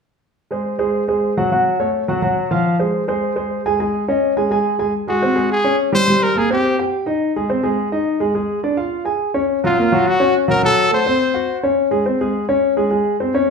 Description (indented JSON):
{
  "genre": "jazz",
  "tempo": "210 BPM",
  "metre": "4/4",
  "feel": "straight",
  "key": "Db major",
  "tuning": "A4 = 438 Hz",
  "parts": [
    { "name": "warm concert grand piano", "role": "accompaniment", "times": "0.5-13.5 s", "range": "F3 to Ab5", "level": "-16 LUFS", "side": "equal", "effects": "none" },
    { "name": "brilliant trumpet", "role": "melody", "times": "5.1-6.8, 9.7-11.6 s", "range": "F4 to C5", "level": "-17 LUFS", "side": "left 1 dB", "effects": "none" }
  ],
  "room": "wet large studio reverb, RT60 0.8 s",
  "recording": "heard from further back in the room",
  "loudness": "-15 LUFS",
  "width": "side -5 dB against mid",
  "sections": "0.4-4.9 A section; 4.9-13.5 B section",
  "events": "none",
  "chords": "0.4 Ab7; 1.5 Gbmmaj7; 2.7 Fm; 3.8 Absus4; 4.9 Db5; 6.1 Gmadd11; 6.6 C5; 7.2 Ab; 8.4 Ddim/Ab; 9.5 Gbmaj7; 10.6 Gbdim; 11.8 Dbmaj7(no3)",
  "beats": "| 0.37 0.65 0.94 1.22 | 1.51 1.80 2.08 2.37 | 2.65 2.94 3.22 3.51 | 3.79 4.08 4.37 4.65 | 4.94 5.22 5.51 5.79 | 6.08 6.36 6.65 6.93 | 7.22 7.50 7.79 8.07 | 8.35 8.64 8.92 9.21 | 9.49 9.78 10.06 10.35 | 10.63 10.92 11.21 11.49 | 11.78 12.06 12.35 12.63 | 12.92 13.21 13.49"
}